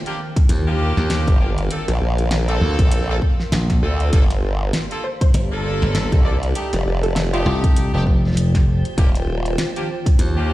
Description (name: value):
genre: glitch hop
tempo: 99 BPM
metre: 4/4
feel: swing 58% on 16ths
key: unclear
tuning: A4 = 440 Hz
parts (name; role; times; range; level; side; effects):
- granular cloud pad; texture; 0.0-10.5 s; Eb3 to C6; -29 LUFS; equal; built-in reverb, sidechain pumping
- clear horn section; stabs; 0.1-10.5 s; A3 to A4; -28 LUFS; equal; sidechain pumping, digital delay
- pop drum kit; drums; 0.1-10.3 s; hi-hat, snare drum; -26 LUFS; equal; studio reverb
- electronic kick drum; drums; 0.4-10.2 s; none; -16 LUFS; equal; studio reverb
- glassy slap bass; bass; 0.5-10.5 s; F1 to Eb2; -18 LUFS; equal; none
- formant-sweep wobble bass; bass; 1.3-9.6 s; Eb1 to D2; -20 LUFS; equal; chorus, overdrive
- woody wave-folded pluck; melody; 5.0-7.6 s; F4 to D5; -28 LUFS; equal; ensemble chorus, cassette tape, digital delay
room: little or no reverb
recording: played on a big sound system in a bare room, stone room reverb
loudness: -16 LUFS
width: side -16 dB against mid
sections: 0.0-10.5 A section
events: none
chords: 0.0 Ebmaj7; 1.7 Bbmaj7; 4.1 Gm9; 6.6 F13; 9.0 Ebmaj7